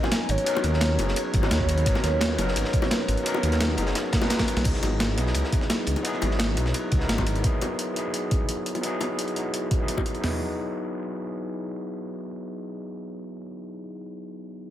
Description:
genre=liquid drum and bass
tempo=172 BPM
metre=4/4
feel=straight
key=C# dorian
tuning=A4 = 437 Hz
part: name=hollow clarinet-like synth lead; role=melody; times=0.0-4.3 s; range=C#5 to G#5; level=-30 LUFS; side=right 1 dB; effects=analog chorus, tape echo
part: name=overdriven tine electric piano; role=accompaniment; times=0.0-14.7 s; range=F#3 to B4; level=-29 LUFS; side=left 1 dB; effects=wide subtle chorus, low-pass filter, tape echo
part: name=breakbeat sampler-style drum kit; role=drums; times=0.0-10.2 s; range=crash cymbal, hi-hat, snare drum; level=-29 LUFS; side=equal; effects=overdrive
part: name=crunchy breakbeat drum kit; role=drums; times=0.0-7.3 s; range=ride cymbal, snare drum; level=-34 LUFS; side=equal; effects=high-pass filter on cymbals, high-pass filter on snare, high-pass filter on room
part: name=bongos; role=percussion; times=0.0-10.0 s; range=none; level=-33 LUFS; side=left 3 dB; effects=none
part: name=dark detuned saw bass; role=bass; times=0.3-7.4 s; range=F#1 to D#2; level=-25 LUFS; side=equal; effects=none
part: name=breakbeat sampler-style drum kit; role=drums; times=1.3-10.3 s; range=hi-hat, kick drum, snare drum, toms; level=-26 LUFS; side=equal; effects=overdrive
room=light reverb, digital ambience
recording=none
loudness=-23 LUFS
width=side -12 dB against mid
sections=0.0-4.7 A section; 4.7-10.2 B section; 10.2-13.0 C section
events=drop 0.0-4.7; drum fill 4.1-4.7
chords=0.0 G#m11; 4.7 C#m11 (rootless); 10.2 F#13sus4

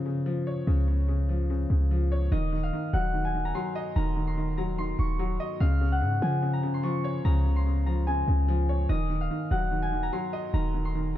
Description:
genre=hip hop, trap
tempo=146 BPM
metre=4/4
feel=half-time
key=Eb dorian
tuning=A4 = 440 Hz
part: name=concert harp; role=melody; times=0.0-11.2 s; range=Bb4 to Db6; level=-33 LUFS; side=left 1 dB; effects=low-pass filter, digital delay
part: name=dark grand piano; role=accompaniment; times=0.0-11.2 s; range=Db3 to Eb5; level=-31 LUFS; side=left 2 dB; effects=low-pass filter
part: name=clean 808-style bass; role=bass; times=0.0-11.2 s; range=Eb1 to Db3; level=-26 LUFS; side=equal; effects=none
room=small room ambience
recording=none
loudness=-25 LUFS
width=side -12 dB against mid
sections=0.0-2.3 A section; 2.3-11.2 B section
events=break 0.0-2.3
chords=0.0 Db; 2.3 Ebm; 5.6 Db; 8.9 Ebm

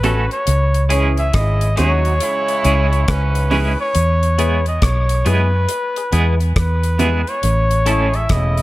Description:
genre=roots reggae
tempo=69 BPM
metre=4/4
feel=swing 63% on 16ths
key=C# minor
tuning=A4 = 439 Hz
part: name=warm flugelhorn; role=melody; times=0.0-8.6 s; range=B4 to E5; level=-20 LUFS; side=equal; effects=tape echo
part: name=clean electric guitar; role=accompaniment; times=0.0-8.1 s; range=G#3 to A4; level=-24 LUFS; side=right 3 dB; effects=tremolo, tape echo
part: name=percussive organ stab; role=stabs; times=0.0-8.1 s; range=B3 to C#5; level=-26 LUFS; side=left 4 dB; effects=chorus
part: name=vintage muted fingered electric bass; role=bass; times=0.0-8.6 s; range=E1 to F#2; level=-16 LUFS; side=equal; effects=none
part: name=damped 70s drum kit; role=drums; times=0.0-8.6 s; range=hi-hat, kick drum, rim click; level=-22 LUFS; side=equal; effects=none
part: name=bongos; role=percussion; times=0.0-7.2 s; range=none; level=-24 LUFS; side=right 4 dB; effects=none
part: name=warm horn section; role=second line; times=0.9-8.6 s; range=G#2 to G#4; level=-25 LUFS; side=right 3 dB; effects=tape echo
room=light reverb, small room ambience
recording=none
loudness=-14 LUFS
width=side -17 dB against mid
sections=0.0-8.6 A section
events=none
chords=0.5 C#m; 4.0 E; 7.4 A

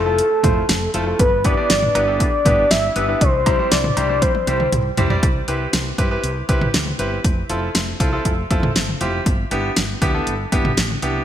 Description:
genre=synth-pop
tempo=119 BPM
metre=4/4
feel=straight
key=C major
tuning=A4 = 437 Hz
part: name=soft octave-layered synth lead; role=melody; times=0.0-4.7 s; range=A4 to E5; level=-19 LUFS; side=left 1 dB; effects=chorus, ping-pong delay
part: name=bright concert grand piano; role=accompaniment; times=0.0-11.2 s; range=G3 to D5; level=-23 LUFS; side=equal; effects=none
part: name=woody fretless electric bass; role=bass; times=0.0-11.2 s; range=F1 to G2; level=-24 LUFS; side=equal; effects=none
part: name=deep house drum kit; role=drums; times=0.2-11.1 s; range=cowbell, hi-hat, kick drum, snare drum, toms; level=-19 LUFS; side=equal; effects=none
room=moderate lush hall reverb, RT60 1.9 s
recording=bright 1980s-style digital production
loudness=-16 LUFS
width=side -10 dB against mid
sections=0.0-5.2 A section; 5.2-11.2 B section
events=drum fill 4.2-5.2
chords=0.0 Fmaj7; 1.2 G6; 3.2 C; 5.2 Cmaj7; 7.2 Fmaj7; 9.3 G6

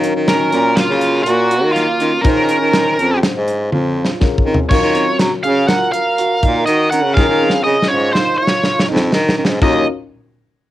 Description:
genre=progressive instrumental, band music in an uneven meter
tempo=122 BPM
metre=5/4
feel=straight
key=Eb dorian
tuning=A4 = 439 Hz
part: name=warm grand piano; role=accompaniment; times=0.0-9.8 s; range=Gb3 to F5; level=-23 LUFS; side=left 9 dB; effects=cassette tape
part: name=dark grand piano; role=arpeggios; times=0.0-9.8 s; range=C4 to Gb4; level=-25 LUFS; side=right 7 dB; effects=cassette tape
part: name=bright baritone saxophone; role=bass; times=0.0-9.8 s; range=Eb2 to Gb3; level=-17 LUFS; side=equal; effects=none
part: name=modern studio drum kit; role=drums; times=0.0-9.7 s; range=crash cymbal, hi-hat, kick drum, snare drum, toms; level=-17 LUFS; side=equal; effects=none
part: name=biting lead guitar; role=melody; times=0.3-9.9 s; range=F4 to Gb5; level=-16 LUFS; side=equal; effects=overdrive, cassette tape
part: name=breathy flugelhorn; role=second line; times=0.3-9.8 s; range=Gb3 to Bb4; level=-23 LUFS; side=right 7 dB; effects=cassette tape
room=light reverb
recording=home recording on cassette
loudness=-12 LUFS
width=side -14 dB against mid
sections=0.0-4.7 A section; 4.7-9.6 B section; 9.6-10.7 C section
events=drum fill 3.7-4.7, 7.2-9.6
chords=0.0 Ebm9; 2.3 Bbm9; 4.7 Ebm9; 7.2 Bbm9; 9.6 Ebm9

